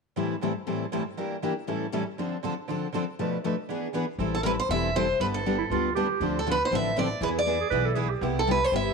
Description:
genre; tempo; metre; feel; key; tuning
acoustic string swing (jazz manouche); 238 BPM; 4/4; swing 56% on 8ths; A minor; A4 = 440 Hz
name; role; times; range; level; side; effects
picked steel-string acoustic guitar; accompaniment; 0.2-8.9 s; A2 to A4; -30 LUFS; left 12 dB; none
picked steel-string acoustic guitar; accompaniment; 0.2-8.9 s; A2 to B4; -31 LUFS; right 11 dB; none
upright bass; bass; 4.2-8.9 s; E1 to E2; -32 LUFS; left 1 dB; none
picked steel-string acoustic guitar; melody; 4.3-8.9 s; A4 to E5; -26 LUFS; right 1 dB; none
clear clarinet; second line; 5.6-8.3 s; E4 to B4; -29 LUFS; right 10 dB; none
room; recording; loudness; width
moderate echo chamber reverb, RT60 2.1 s; 1960s-style stereo with parts hard left and right; -25 LUFS; side -4 dB against mid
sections
0.2-4.2 A section; 4.2-8.9 B section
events
none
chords
0.2 Am7; 1.2 Em7b5; 1.7 A7; 2.2 Dm7; 3.2 Bm7b5; 3.7 E7; 4.2 Am7; 5.2 Gadd9; 6.2 Dm7; 7.2 E; 8.2 Cmaj7

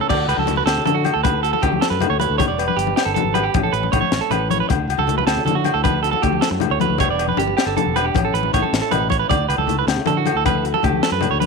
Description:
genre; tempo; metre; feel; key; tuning
highlife guitar band; 104 BPM (dotted quarters); 12/8; straight; D major; A4 = 440 Hz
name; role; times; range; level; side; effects
picked old ladder-braced acoustic guitar; accompaniment; 0.0-11.5 s; A2 to D5; -27 LUFS; left 14 dB; none
clean electric guitar; arpeggios; 0.0-11.5 s; F#4 to D5; -20 LUFS; right 14 dB; slapback echo
fingered electric bass; bass; 0.1-11.5 s; E1 to D3; -24 LUFS; right 1 dB; none
tight funk drum kit; drums; 0.1-11.5 s; crash cymbal, hi-hat, kick drum, snare drum; -23 LUFS; left 2 dB; none
agogo bells; percussion; 0.1-11.4 s; none; -26 LUFS; left 12 dB; none
congas; percussion; 0.1-11.5 s; none; -24 LUFS; left 12 dB; none
room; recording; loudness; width
light reverb, studio reverb; 1960s-style stereo with parts hard left and right; -16 LUFS; side -4 dB against mid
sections
0.1-11.5 A section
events
none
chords
0.1 Dadd9; 2.4 G; 3.5 A; 4.7 Dadd9; 7.0 G; 8.2 A; 9.3 Dadd9

